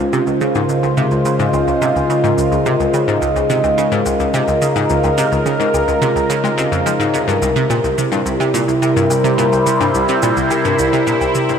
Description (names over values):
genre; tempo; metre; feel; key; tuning
ambient, sequencer-driven space music; 107 BPM; 4/4; straight; unclear; A4 = 440 Hz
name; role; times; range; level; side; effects
sweeping resonant pad; sustained chords; 0.0-11.6 s; C3 to C5; -16 LUFS; equal; chorus, phaser, shimmer reverb
concert harp; arpeggios; 0.0-11.6 s; C4 to C5; -22 LUFS; left 1 dB; auto-pan, ping-pong delay, shimmer reverb
analog pluck; riff; 0.0-11.6 s; C2 to Ab3; -18 LUFS; equal; chorus, ping-pong delay, shimmer reverb
shaker and woodblock; percussion; 0.1-11.6 s; none; -29 LUFS; left 2 dB; ping-pong delay
room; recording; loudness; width
wet plate reverb, RT60 2.7 s; none; -13 LUFS; side -7 dB against mid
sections
0.0-11.6 A section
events
fade-in on harp 0.0-11.6; fade-in on drum 0.0-11.6; fade-out 10.1-11.6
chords
0.0 Dbadd9; 7.1 C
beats
| 0.41 0.97 1.54 2.10 | 2.66 3.22 3.78 4.34 | 4.90 5.46 6.02 6.58 | 7.14 7.70 8.27 8.83 | 9.39 9.95 10.51 11.07